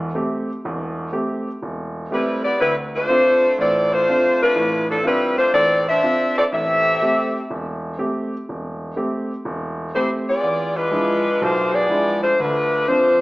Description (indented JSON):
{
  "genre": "jazz",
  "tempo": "122 BPM",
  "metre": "4/4",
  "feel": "swing 66% on 8ths",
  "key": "A minor",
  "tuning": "A4 = 436 Hz",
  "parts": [
    { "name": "warm concert grand piano", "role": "accompaniment", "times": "0.0-13.2 s", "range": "E1 to G4", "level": "-24 LUFS", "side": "right 1 dB", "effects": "none" },
    { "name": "clear saxophone section", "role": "melody", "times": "2.1-13.2 s", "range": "F3 to E5", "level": "-17 LUFS", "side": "equal", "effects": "none" }
  ],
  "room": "wet large studio reverb, RT60 1.4 s",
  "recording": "small speaker sound",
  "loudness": "-17 LUFS",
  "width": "side -20 dB against mid",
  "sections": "0.0-13.2 A section",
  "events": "none",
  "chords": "0.0 Am7; 2.6 Dm7; 6.5 Am7; 10.4 E7b9; 12.4 Dm7"
}